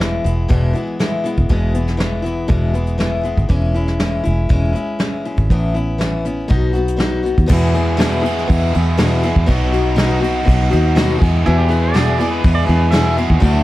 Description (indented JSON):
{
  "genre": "folk rock and heartland rock",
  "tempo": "120 BPM",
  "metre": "4/4",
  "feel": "straight",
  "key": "E major",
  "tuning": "A4 = 445 Hz",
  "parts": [
    { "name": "picked steel-string acoustic guitar", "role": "accompaniment", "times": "0.0-13.6 s", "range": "E2 to G#4", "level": "-19 LUFS", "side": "left 2 dB", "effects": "none" },
    { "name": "fingered electric bass", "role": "bass", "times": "0.0-13.6 s", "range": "E1 to E2", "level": "-17 LUFS", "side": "equal", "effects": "none" },
    { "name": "soft brush drum kit", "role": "drums", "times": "0.0-13.5 s", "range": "crash cymbal, hi-hat, kick drum, ride cymbal, snare drum", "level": "-19 LUFS", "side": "equal", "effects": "none" },
    { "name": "biting overdriven guitar", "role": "riff", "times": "7.5-13.6 s", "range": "E2 to G#4", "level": "-21 LUFS", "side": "right 2 dB", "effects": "none" },
    { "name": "pedal steel guitar", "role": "second line", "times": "11.5-13.2 s", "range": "E4 to E5", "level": "-23 LUFS", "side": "right 3 dB", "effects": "none" }
  ],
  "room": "light reverb",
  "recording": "dark, warm production, vinyl crackle",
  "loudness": "-14 LUFS",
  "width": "side -16 dB against mid",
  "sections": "0.0-7.5 A section; 7.5-13.6 B section",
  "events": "none",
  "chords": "0.0 E; 3.5 C#m/E; 5.5 Aadd9; 6.5 B; 7.5 E; 9.5 B; 11.2 E"
}